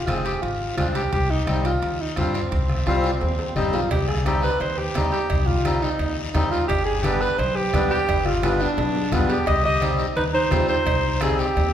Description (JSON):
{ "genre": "latin, cumbia", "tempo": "172 BPM", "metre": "4/4", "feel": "straight", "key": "C harmonic minor", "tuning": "A4 = 441 Hz", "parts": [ { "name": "breathy alto saxophone", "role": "melody", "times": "0.0-11.7 s", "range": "C4 to Eb5", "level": "-24 LUFS", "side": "right 1 dB", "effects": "none" }, { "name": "accordion", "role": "accompaniment", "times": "0.1-11.5 s", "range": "G3 to Ab4", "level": "-27 LUFS", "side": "left 2 dB", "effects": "none" }, { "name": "upright bass", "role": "bass", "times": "0.1-11.7 s", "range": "F1 to G2", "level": "-26 LUFS", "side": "equal", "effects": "none" }, { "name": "bombo", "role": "percussion", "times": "0.1-11.4 s", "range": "none", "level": "-29 LUFS", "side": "right 1 dB", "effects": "none" }, { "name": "congas", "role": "percussion", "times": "0.1-11.4 s", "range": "none", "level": "-31 LUFS", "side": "left 1 dB", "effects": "none" }, { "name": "guiro", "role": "percussion", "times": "0.1-11.7 s", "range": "none", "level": "-37 LUFS", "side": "left 4 dB", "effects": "none" }, { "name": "timbales and cowbell", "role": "percussion", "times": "0.1-11.7 s", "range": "none", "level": "-34 LUFS", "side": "right 3 dB", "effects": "none" }, { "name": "clear clarinet", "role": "second line", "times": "9.1-11.7 s", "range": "B3 to G4", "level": "-27 LUFS", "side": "left 3 dB", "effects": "none" } ], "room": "wet recital hall reverb, RT60 1.6 s", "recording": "recorded in a church or concert hall", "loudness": "-19 LUFS", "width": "side -10 dB against mid", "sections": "0.0-3.9 A section; 3.9-11.7 B section", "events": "drum fill 2.9-3.9, 8.4-9.5", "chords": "0.0 Fm; 1.1 Cm; 6.7 G; 9.5 Cm", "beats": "0.08 0.43 0.78 | 1.12 1.47 1.82 2.17 | 2.52 2.86 3.21 3.56 | 3.91 4.25 4.60 4.95 | 5.30 5.65 5.99 6.34 | 6.69 7.04 7.39 7.73 | 8.08 8.43 8.78 9.13 | 9.47 9.82 10.17 10.52 | 10.87 11.21 11.56" }